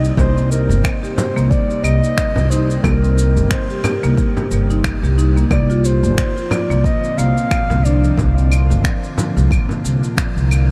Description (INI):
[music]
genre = organic downtempo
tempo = 90 BPM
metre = 4/4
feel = swing 56% on 16ths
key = C minor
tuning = A4 = 440 Hz
[part]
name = mellow clarinet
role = melody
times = 0.0-8.2 s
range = Bb4 to F5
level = -27 LUFS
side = equal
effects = delay
[part]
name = airy breathy pad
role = sustained chords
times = 0.0-10.7 s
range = Bb2 to Eb4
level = -27 LUFS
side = equal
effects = chorus, phaser, sidechain pumping
[part]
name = marimba with medium hard mallets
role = arpeggios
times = 0.0-8.2 s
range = Bb3 to Bb4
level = -26 LUFS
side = equal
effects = delay
[part]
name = upright bass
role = bass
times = 0.0-10.7 s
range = G1 to C2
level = -18 LUFS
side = equal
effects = none
[part]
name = electronic shaker, finger snaps and claves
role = drums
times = 0.0-10.7 s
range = none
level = -30 LUFS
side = equal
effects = none
[part]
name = electronic kick drum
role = drums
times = 0.2-10.3 s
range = none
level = -21 LUFS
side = equal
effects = none
[part]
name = frame drum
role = percussion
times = 0.2-9.8 s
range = none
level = -27 LUFS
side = equal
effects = none
[sound]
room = moderate huge ambient reverb, RT60 8.3 s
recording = dreamy mix soaked in reverb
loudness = -16 LUFS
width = mono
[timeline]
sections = 0.0-10.7 A section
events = none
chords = 0.0 Cm7; 5.5 Bbadd9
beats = | 0.18 0.84 1.51 2.18 | 2.85 3.51 4.18 4.84 | 5.51 6.18 6.84 7.51 | 8.18 8.85 9.51 10.18